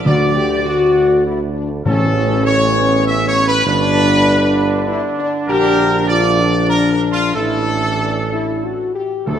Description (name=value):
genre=classical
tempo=91-100 BPM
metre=3/4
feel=straight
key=unclear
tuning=A4 = 437 Hz
part: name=bright trombone section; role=sustained chords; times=0.0-9.4 s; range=A2 to D4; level=-24 LUFS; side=right 4 dB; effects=none
part: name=mellow tuba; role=bass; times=0.0-9.4 s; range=G1 to D2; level=-19 LUFS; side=right 3 dB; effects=none
part: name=warm trumpet section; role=melody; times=0.1-9.4 s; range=F4 to E5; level=-18 LUFS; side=right 1 dB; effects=none
part: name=mellow French horn section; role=sustained chords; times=0.1-9.4 s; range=A3 to G4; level=-18 LUFS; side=left 4 dB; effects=none
part: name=timpani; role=percussion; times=0.1-2.7, 9.3-9.4 s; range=A2 to D3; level=-21 LUFS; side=left 1 dB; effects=none
room=wet concert hall reverb, RT60 1.9 s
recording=none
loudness=-13 LUFS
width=side -9 dB against mid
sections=0.0-9.3 A section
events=none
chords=0.1 D; 1.9 Aadd9; 3.7 G; 5.5 Bb; 7.3 Asus4